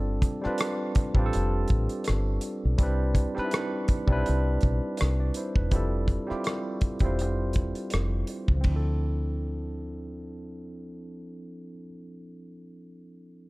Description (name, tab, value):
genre	R&B, neo-soul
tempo	82 BPM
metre	4/4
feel	swing 53% on 16ths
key	D dorian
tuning	A4 = 440 Hz
part	barky tine electric piano	accompaniment	0.0-13.5 s	F3 to D5	-31 LUFS	right 1 dB	medium stereo tremolo
part	deep dub fingered electric bass	bass	0.0-11.8 s	E1 to D2	-27 LUFS	equal	none
part	warm soul drum kit	drums	0.2-8.8 s	hi-hat, kick drum, ride cymbal, rim click	-26 LUFS	equal	none
room	small room ambience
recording	none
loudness	-24 LUFS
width	side -22 dB against mid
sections	0.0-8.6 A section; 8.6-11.6 B section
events	none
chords	0.0 G9sus4; 2.8 Cmaj9; 5.7 Fmaj7; 8.6 Dm7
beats	0.59 1.33 2.06 | 2.79 3.52 4.25 4.99 | 5.72 6.45 7.18 7.91 | 8.64 9.38 10.11 10.84